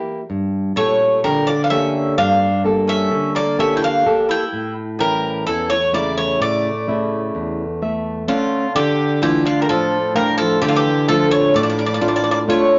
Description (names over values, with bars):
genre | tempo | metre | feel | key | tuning
greek folk, Greek bouzouki band | 128 BPM (eighths) | 9/8 | straight | D harmonic minor | A4 = 440 Hz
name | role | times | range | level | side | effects
flamenco guitar | accompaniment | 0.0-12.8 s | E2 to F5 | -21 LUFS | equal | none
Greek bouzouki | melody | 0.8-12.8 s | F4 to G5 | -21 LUFS | equal | none
Greek bouzouki | second line | 0.8-12.8 s | D3 to E4 | -27 LUFS | equal | none
room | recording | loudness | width
wet large studio reverb, RT60 0.9 s | nothing above 7.6 kHz | -18 LUFS | mono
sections
0.0-8.7 A section; 8.7-12.8 B section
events
none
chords
0.3 Gmadd9; 4.5 A; 8.7 Dm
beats
| 0.30 0.77 1.24 1.71 2.18 2.65 3.12 3.59 4.06 | 4.53 5.00 5.47 5.94 6.41 6.88 7.34 7.81 8.28 | 8.75 9.22 9.68 10.15 10.62 11.08 11.55 12.02 12.48